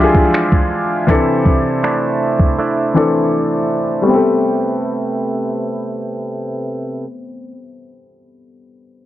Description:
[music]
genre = contemporary R&B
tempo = 80 BPM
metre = 4/4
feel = straight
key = A minor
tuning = A4 = 443 Hz
[part]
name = clear grand piano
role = accompaniment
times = 0.0-9.1 s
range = E3 to A4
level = -17 LUFS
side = left 3 dB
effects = none
[part]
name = hand-pumped harmonium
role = sustained chords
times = 0.0-7.1 s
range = C3 to A5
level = -22 LUFS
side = right 1 dB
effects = none
[part]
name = direct-recorded clean electric guitar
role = arpeggios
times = 0.0-7.7 s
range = C3 to B4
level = -22 LUFS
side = right 4 dB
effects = tape echo
[part]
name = clean 12-bit digital drum machine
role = drums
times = 0.1-2.6 s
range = finger snaps, kick drum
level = -15 LUFS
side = equal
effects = overdrive
[sound]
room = little or no reverb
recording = dry, gritty hardware recording, low-pass filter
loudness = -14 LUFS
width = side -13 dB against mid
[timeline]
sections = 0.0-4.1 A section; 4.1-7.1 B section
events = filter sweep 0.0-4.1; drums muted 2.6-4.1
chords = 0.0 E7b9; 1.1 C69; 4.1 Am9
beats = 0.33 | 1.08 1.83 2.58 3.33 | 4.08 4.83 5.58 6.33

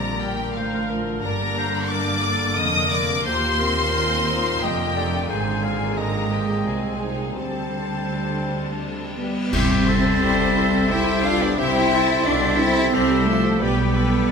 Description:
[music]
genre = cinematic, emotional film score for orchestra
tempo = 88 BPM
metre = 3/4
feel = rubato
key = C major from 9.5 s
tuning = A4 = 440 Hz
[part]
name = warm symphonic violin section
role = melody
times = 0.0-14.3 s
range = F5 to Eb6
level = -28 LUFS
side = left 3 dB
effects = none
[part]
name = clear clarinet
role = second line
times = 0.0-14.3 s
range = G4 to F5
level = -29 LUFS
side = left 1 dB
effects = none
[part]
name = clear symphonic violin section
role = second line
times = 0.0-14.3 s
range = F4 to F5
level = -30 LUFS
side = left 4 dB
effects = none
[part]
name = rich studio viola section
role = accompaniment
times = 0.0-14.3 s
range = D3 to E5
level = -29 LUFS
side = right 2 dB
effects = none
[part]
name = mellow French horn section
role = sustained chords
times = 0.0-14.3 s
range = Bb2 to Bb4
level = -26 LUFS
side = left 4 dB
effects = none
[part]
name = rich symphonic cello section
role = bass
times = 0.0-14.3 s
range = Eb2 to F4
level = -25 LUFS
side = right 2 dB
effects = none
[part]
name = rich symphonic double bass section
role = bass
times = 0.0-14.3 s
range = F1 to Eb2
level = -28 LUFS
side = right 3 dB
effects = none
[part]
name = cymbal swell, clash cymbals and concert bass drum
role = percussion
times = 5.3-10.9 s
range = none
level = -29 LUFS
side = equal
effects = none
[part]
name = mellow cor anglais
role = second line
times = 9.5-14.3 s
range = G4 to C5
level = -28 LUFS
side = right 2 dB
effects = none
[part]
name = silver concert flute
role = second line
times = 9.5-14.3 s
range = E5 to G5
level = -30 LUFS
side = left 2 dB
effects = none
[sound]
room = wet scoring stage reverb, RT60 1.6 s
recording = none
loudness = -19 LUFS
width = side -6 dB against mid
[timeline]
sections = 0.0-9.5 A section; 9.5-14.3 B section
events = band accent 9.5-10.2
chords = 0.0 Bb; 1.2 Gm; 3.3 Ebsus2; 5.3 Abadd9; 7.4 D7sus4; 9.5 C; 13.6 G/B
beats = 0.57 | 1.24 1.91 2.58 | 3.26 3.94 4.62 | 5.30 5.98 6.67 | 7.38 8.10 8.82 | 9.52 10.21 10.90 | 11.58 12.26 12.93 | 13.61 14.28

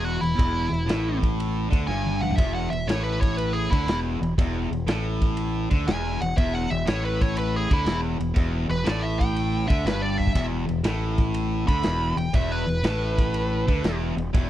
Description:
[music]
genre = blues rock power trio and southern rock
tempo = 120 BPM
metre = 4/4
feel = swing 68% on 8ths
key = unclear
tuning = A4 = 437 Hz
[part]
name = nasal lead guitar with a parked wah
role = melody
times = 0.0-14.0 s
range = E4 to B5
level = -29 LUFS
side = equal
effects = overdrive
[part]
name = distorted electric guitar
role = riff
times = 0.0-14.5 s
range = E2 to D3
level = -27 LUFS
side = left 1 dB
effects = overdrive
[part]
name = growling fingered electric bass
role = bass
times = 0.0-14.5 s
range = E1 to D2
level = -28 LUFS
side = equal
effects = overdrive
[part]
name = raw garage drum kit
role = drums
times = 0.2-14.5 s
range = kick drum, ride cymbal, snare drum, splash cymbal, toms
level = -24 LUFS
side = equal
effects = none
[sound]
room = little or no reverb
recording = dry, close 1970s-style studio recording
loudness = -22 LUFS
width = side -13 dB against mid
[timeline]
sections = 0.0-14.5 A section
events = lead electric guitar solo 0.0-14.5; drum fill 1.9-2.4, 10.1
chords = 0.0 E5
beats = | 0.38 0.88 1.38 1.88 | 2.38 2.88 3.38 3.88 | 4.38 4.87 5.37 5.87 | 6.37 6.87 7.37 7.87 | 8.36 8.86 9.36 9.86 | 10.36 10.85 11.35 11.85 | 12.35 12.84 13.34 13.84 | 14.34

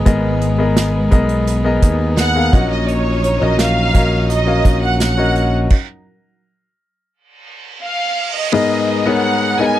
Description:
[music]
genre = piano-driven pop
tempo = 85 BPM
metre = 4/4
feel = straight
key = unclear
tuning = A4 = 440 Hz
[part]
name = clear grand piano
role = accompaniment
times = 0.0-9.8 s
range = G#2 to E#5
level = -17 LUFS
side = left 4 dB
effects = none
[part]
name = bright studio string section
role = sustained chords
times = 0.0-9.8 s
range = F#3 to A#4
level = -27 LUFS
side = right 3 dB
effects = none
[part]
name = modern bright picked electric bass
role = bass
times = 0.0-5.7 s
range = G#1 to D#2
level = -17 LUFS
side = equal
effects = none
[part]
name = unplugged drum kit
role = drums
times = 0.1-5.9 s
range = crash cymbal, hi-hat, kick drum, snare drum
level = -14 LUFS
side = right 1 dB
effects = none
[part]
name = warm symphonic violin section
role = melody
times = 2.2-9.8 s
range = C#5 to G#5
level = -19 LUFS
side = right 2 dB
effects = none
[part]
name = reverse cymbal and downlifter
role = sound effects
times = 7.4-9.8 s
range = none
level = -26 LUFS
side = right 6 dB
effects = none
[sound]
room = little or no reverb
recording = dry, close 1970s-style studio recording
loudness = -13 LUFS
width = side -13 dB against mid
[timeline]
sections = 0.0-8.5 A section; 8.5-9.8 B section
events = stop 5.7-8.5; reverse cymbal 7.4-8.5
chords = 0.0 G#madd9; 2.5 F#6/A#; 5.7 N.C.; 8.5 G#madd9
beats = | 0.06 0.77 1.47 2.18 | 2.89 3.59 4.30 5.01 | 5.71 6.42 7.12 7.83 | 8.54 9.24

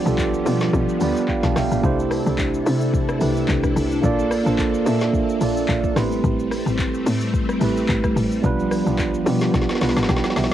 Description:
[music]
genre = amapiano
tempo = 109 BPM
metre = 4/4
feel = swing 55% on 16ths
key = unclear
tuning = A4 = 436 Hz
[part]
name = mellow tine electric piano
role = accompaniment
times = 0.0-10.5 s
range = G3 to C6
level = -22 LUFS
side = right 4 dB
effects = cassette tape
[part]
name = string machine, violas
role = sustained chords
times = 0.0-10.5 s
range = C3 to A4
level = -25 LUFS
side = left 2 dB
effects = ensemble chorus, sidechain pumping, cassette tape
[part]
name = woody log drum bass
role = bass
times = 0.1-10.5 s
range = A1 to C3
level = -24 LUFS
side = left 2 dB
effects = none
[part]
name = deep house drum kit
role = drums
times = 0.1-10.5 s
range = handclaps, hi-hat, kick drum, rim click, shaker, snare drum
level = -25 LUFS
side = left 2 dB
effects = none
[sound]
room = moderate studio ambience, RT60 0.5 s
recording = home recording on cassette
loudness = -18 LUFS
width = side -11 dB against mid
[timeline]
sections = 0.0-10.5 A section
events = tine electric piano fill 0.7-1.8, 5.4-6.2, 9.8-10.5; drum fill 9.5-10.5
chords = 0.0 G7/B; 1.8 C69; 4.0 Bbmaj7; 6.0 Am9; 8.4 G7/B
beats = 0.18 0.73 1.28 | 1.83 2.38 2.93 3.48 | 4.04 4.59 5.14 5.69 | 6.24 6.79 7.34 7.89 | 8.44 8.99 9.54 10.09

